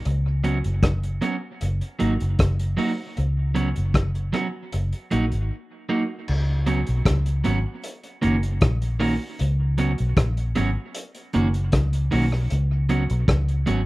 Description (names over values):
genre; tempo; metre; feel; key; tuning
roots reggae; 77 BPM; 4/4; straight; unclear; A4 = 440 Hz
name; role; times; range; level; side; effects
vintage muted fingered electric bass; bass; 0.1-13.9 s; Gb1 to Db2; -22 LUFS; equal; none
vintage drum kit; drums; 0.1-13.9 s; crash cymbal, hi-hat, kick drum, rim click; -24 LUFS; equal; tape echo
electric guitar at the edge of break-up; accompaniment; 0.4-13.8 s; Eb3 to Gb4; -26 LUFS; right 2 dB; spring reverb, dub echo
room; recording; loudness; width
light reverb; rough home demo mix; -20 LUFS; side -19 dB against mid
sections
0.0-6.3 A section; 6.3-13.9 B section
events
break 5.5-6.3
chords
0.1 Db7sus4; 1.6 Gb6; 3.2 Db7sus4; 4.7 Gb6; 6.3 Db7sus4; 7.8 Gb6; 9.4 Db7sus4; 10.9 Gb6; 12.5 Db7sus4